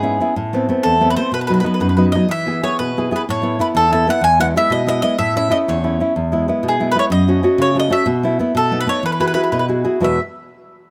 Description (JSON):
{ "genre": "italian folk", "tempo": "124 BPM (dotted quarters)", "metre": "6/8", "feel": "rubato", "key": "E major", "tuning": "A4 = 440 Hz", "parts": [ { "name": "mandolin", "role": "melody", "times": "0.0-10.2 s", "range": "G#4 to G#5", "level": "-21 LUFS", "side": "equal", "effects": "none" }, { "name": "nylon-string guitar", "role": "accompaniment", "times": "0.0-10.2 s", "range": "E2 to B4", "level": "-19 LUFS", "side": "equal", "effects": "none" } ], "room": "light reverb, studio reverb", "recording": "rough home demo mix", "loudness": "-17 LUFS", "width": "mono", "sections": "0.0-10.0 A section", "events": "none", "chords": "0.4 Amadd9; 1.3 B; 2.3 E; 3.3 Asus2; 4.2 E; 5.2 A; 6.2 E; 7.1 F#m; 8.1 B7sus4; 8.6 B7; 9.0 Eadd9", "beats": "| 0.36 0.84 | 1.32 1.81 | 2.30 2.79 | 3.27 3.75 | 4.22 4.70 | 5.18 5.66 | 6.15 6.64 | 7.12 7.59 | 8.07 8.55 | 9.04 9.53 | 10.03" }